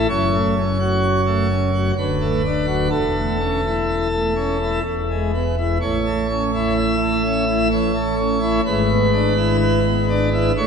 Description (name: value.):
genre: classical, chorale-style piece for pipe organ.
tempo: 63 BPM.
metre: 3/4.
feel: rubato.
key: A major.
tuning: A4 = 445 Hz.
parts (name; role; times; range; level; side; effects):
pipe organ, plenum; solo; 0.0-10.7 s; D1 to E5; -17 LUFS; equal; none.
room: wet church reverb, RT60 3.1 s.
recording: recorded in a church or concert hall.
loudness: -17 LUFS.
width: side -6 dB against mid.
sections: 0.0-10.7 A section.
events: none.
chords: 0.1 F#m; 2.0 D; 2.9 A/E; 4.8 E; 5.8 A; 8.6 E7/G#.